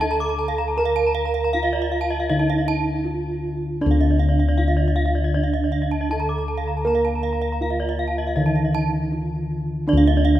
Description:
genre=Balinese gamelan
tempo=79 BPM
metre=4/4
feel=straight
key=D pelog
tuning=A4 = 440 Hz
part: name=gamelan-type bronze metallophone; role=melody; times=0.0-10.4 s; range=D4 to Bb4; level=-25 LUFS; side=right 3 dB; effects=none
part: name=gamelan-type bronze metallophone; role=arpeggios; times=0.0-10.4 s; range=D5 to D6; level=-27 LUFS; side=left 2 dB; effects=none
part: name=gamelan-type bossed gongs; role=bass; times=0.0-10.4 s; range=D2 to Bb4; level=-21 LUFS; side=left 1 dB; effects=none
part: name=gamelan-type bronze metallophone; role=arpeggios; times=0.1-10.4 s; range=Eb5+35c to Bb5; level=-30 LUFS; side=right 9 dB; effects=none
part: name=gamelan-type bronze metallophone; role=accompaniment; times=3.8-10.4 s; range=D3 to Bb3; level=-29 LUFS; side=right 2 dB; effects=none
room=light reverb, studio reverb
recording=rough home demo mix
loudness=-19 LUFS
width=side -12 dB against mid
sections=0.0-10.4 A section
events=break 2.7-3.8, 8.7-9.9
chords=none

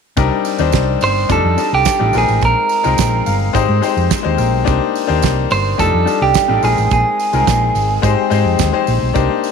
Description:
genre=disco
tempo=107 BPM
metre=4/4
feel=straight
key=C minor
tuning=A4 = 440 Hz
part: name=bright grand piano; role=accompaniment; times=0.2-9.5 s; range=G3 to F5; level=-17 LUFS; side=left 10 dB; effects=none
part: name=hollow-body short-scale fingered electric bass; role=bass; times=0.2-9.3 s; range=F1 to Ab2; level=-17 LUFS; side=right 2 dB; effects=none
part: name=damped 70s drum kit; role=drums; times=0.2-9.5 s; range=hi-hat, kick drum, snare drum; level=-21 LUFS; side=right 6 dB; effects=none
part: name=tambourine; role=percussion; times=0.2-9.5 s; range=none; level=-31 LUFS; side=right 17 dB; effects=none
part: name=clean electric guitar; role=melody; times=1.0-8.6 s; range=G4 to C5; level=-16 LUFS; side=right 4 dB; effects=none
room=moderate echo chamber reverb, RT60 2.0 s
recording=1960s-style stereo with parts hard left and right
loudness=-12 LUFS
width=side -6 dB against mid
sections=0.2-9.5 A section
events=grand piano fill 3.0-4.7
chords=0.2 Cm9; 1.3 F13; 2.1 Bb9sus4; 3.5 Abmaj7; 4.7 Cm9; 5.8 F13; 6.6 Bb9sus4; 8.0 Abmaj7

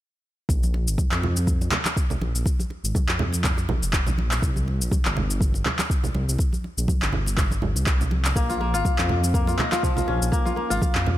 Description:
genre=afro house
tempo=122 BPM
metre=4/4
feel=swing 55% on 16ths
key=Bb dorian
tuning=A4 = 443 Hz
part: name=dark detuned saw bass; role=bass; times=0.5-11.2 s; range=F1 to F2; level=-25 LUFS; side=equal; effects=sidechain pumping
part: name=afro-pop drum kit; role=drums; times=0.5-11.0 s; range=handclaps, shaker, toms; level=-28 LUFS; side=left 1 dB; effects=none
part: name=electronic kick drum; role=drums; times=0.5-10.9 s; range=none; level=-24 LUFS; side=equal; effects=none
part: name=congas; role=percussion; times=0.5-11.2 s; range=none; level=-30 LUFS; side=right 2 dB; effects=none
part: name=kora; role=arpeggios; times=8.4-11.2 s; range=F3 to F4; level=-25 LUFS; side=left 2 dB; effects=sidechain pumping, digital delay
room=little or no reverb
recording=none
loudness=-21 LUFS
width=side -13 dB against mid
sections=0.5-11.2 A section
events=none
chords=0.5 Bb5; 4.4 C5; 8.4 Bbm

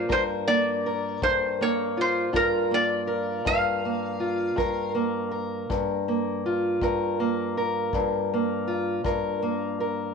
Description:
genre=acoustic country blues, solo or duo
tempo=54 BPM (dotted quarters)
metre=12/8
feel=straight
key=G minor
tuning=A4 = 440 Hz
part: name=metal-body resonator slide guitar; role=melody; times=0.0-4.9 s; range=Bb4 to F5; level=-25 LUFS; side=equal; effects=none
part: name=fingerpicked steel-string acoustic guitar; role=accompaniment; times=0.0-10.1 s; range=G2 to Bb4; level=-25 LUFS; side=equal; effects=none
part: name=kick drum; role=drums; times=0.1-9.2 s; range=none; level=-33 LUFS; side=left 2 dB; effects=none
room=moderate echo chamber reverb, RT60 1.8 s, studio reverb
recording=1960s-style stereo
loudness=-23 LUFS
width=side -5 dB against mid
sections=0.0-10.1 A section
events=none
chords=0.0 Gm7

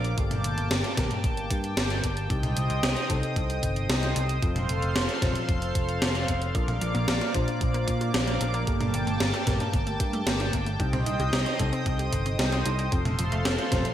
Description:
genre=synthwave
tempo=113 BPM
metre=4/4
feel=straight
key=G minor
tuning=A4 = 440 Hz
part: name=chorused pulse-width pad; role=sustained chords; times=0.0-13.9 s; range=Bb3 to Eb6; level=-31 LUFS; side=right 1 dB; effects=sidechain pumping
part: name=mellow FM electric piano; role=stabs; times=0.0-13.9 s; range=G2 to C5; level=-34 LUFS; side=left 2 dB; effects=chorus, cassette tape, digital delay
part: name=picked electric bass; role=bass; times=0.0-13.8 s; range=F1 to Bb2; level=-29 LUFS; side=equal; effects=none
part: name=gated 80s digital drum machine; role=drums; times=0.0-13.9 s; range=hi-hat, snare drum, toms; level=-29 LUFS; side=equal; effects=gated reverb, gated reverb snare
part: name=electronic kick drum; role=drums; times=0.2-13.8 s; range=none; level=-29 LUFS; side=equal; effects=none
part: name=analog pluck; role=arpeggios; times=6.5-13.9 s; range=F3 to G4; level=-36 LUFS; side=right 2 dB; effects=chorus, digital delay
room=moderate lush hall reverb, RT60 1.9 s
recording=bright 1980s-style digital production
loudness=-24 LUFS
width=side -11 dB against mid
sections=0.0-13.9 A section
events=none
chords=0.2 Gmadd9; 2.3 Cm; 4.4 F; 6.5 Bb; 8.7 Gmadd9; 10.8 Cm; 12.9 F

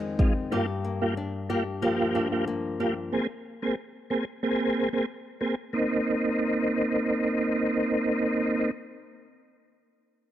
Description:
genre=dancehall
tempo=92 BPM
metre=4/4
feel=straight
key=C minor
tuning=A4 = 436 Hz
part: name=flamenco guitar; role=arpeggios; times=0.0-3.7 s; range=F2 to Ab4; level=-30 LUFS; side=left 3 dB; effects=none
part: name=tonewheel organ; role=accompaniment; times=0.2-8.7 s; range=Ab3 to Ab4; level=-26 LUFS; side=right 1 dB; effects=chorus vibrato, fast rotary speaker
room=light reverb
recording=dark, warm production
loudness=-25 LUFS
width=side -12 dB against mid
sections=0.0-5.7 A section; 5.7-8.3 B section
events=none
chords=0.0 Fm7; 0.5 Gm7; 3.1 Abadd9; 5.7 Cm7

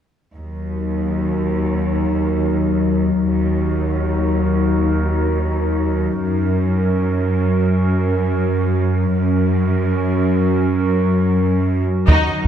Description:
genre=cinematic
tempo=free time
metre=none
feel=none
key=Eb minor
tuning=A4 = 441 Hz
part: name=warbly tape-like pad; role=sustained chords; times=0.5-12.5 s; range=Gb3 to Bb4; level=-19 LUFS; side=left 1 dB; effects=chorus, built-in reverb, low-pass filter
part: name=rich symphonic cello section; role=bass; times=0.4-12.2 s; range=Eb2 to Gb2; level=-19 LUFS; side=right 2 dB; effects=none
part: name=rich symphonic violin section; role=second line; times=12.1-12.4 s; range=Eb4 to Eb5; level=-20 LUFS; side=left 5 dB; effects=none
part: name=warm symphonic viola section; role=accompaniment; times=12.1-12.4 s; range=Eb4 to Gb4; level=-21 LUFS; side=right 1 dB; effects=low-pass filter
part: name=soft round pluck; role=arpeggios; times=12.1-12.3 s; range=Eb3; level=-26 LUFS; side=left 2 dB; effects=none
part: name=tight sequencer bass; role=riff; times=12.1-12.5 s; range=Eb2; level=-14 LUFS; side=right 1 dB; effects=low-pass filter
part: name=bright symphonic double bass section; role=bass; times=12.1-12.2 s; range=Eb2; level=-20 LUFS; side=right 1 dB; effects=none
room=wet scoring stage reverb, RT60 1.7 s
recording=none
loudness=-16 LUFS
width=side -9 dB against mid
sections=0.4-12.1 A section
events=filter sweep 0.4-12.1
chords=0.4 Ebm; 6.2 Gb

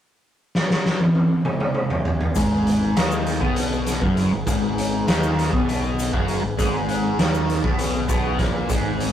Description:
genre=psychedelic rock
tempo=199 BPM (eighths)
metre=7/8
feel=straight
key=G# minor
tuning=A4 = 444 Hz
part: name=raw garage drum kit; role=drums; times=0.6-9.1 s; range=hi-hat, kick drum, snare drum, toms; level=-22 LUFS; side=equal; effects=none
part: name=mellow tonewheel organ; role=sustained chords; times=2.4-9.1 s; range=D#3 to B4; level=-31 LUFS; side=right 4 dB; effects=slow rotary speaker, chorus vibrato
part: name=fuzz guitar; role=riff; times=2.4-9.1 s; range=F#2 to D#4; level=-22 LUFS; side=left 1 dB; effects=distortion, phaser
part: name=growling picked electric bass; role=bass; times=2.4-9.1 s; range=F#1 to D#2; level=-26 LUFS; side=equal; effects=overdrive
part: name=tube shaker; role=percussion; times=2.4-8.8 s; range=none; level=-39 LUFS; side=left 6 dB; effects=none
room=light reverb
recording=rough rehearsal-room recording, tube saturation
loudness=-19 LUFS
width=side -10 dB against mid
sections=0.2-2.4 A section; 2.4-9.1 B section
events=drum fill 0.5-2.4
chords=0.2 N.C.; 2.4 G#m

